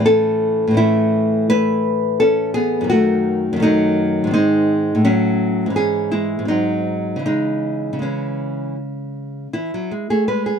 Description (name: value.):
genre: classical, baroque-style dance for nylon-string guitar.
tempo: 77-86 BPM.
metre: 3/4.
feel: rubato.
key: C# minor.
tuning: A4 = 439 Hz.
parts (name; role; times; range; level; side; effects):
nylon-string guitar; solo; 0.0-10.6 s; F#2 to B4; -16 LUFS; equal; none.
room: light reverb.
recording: dry, close 1970s-style studio recording.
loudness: -16 LUFS.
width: side -7 dB against mid.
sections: 0.0-9.6 A section; 9.6-10.6 A section.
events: none.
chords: 0.1 A; 2.9 D#dim/F#; 4.3 G#; 5.0 F#m/A; 5.8 C#m/G#; 6.5 G#7; 7.3 C#m; 9.6 E.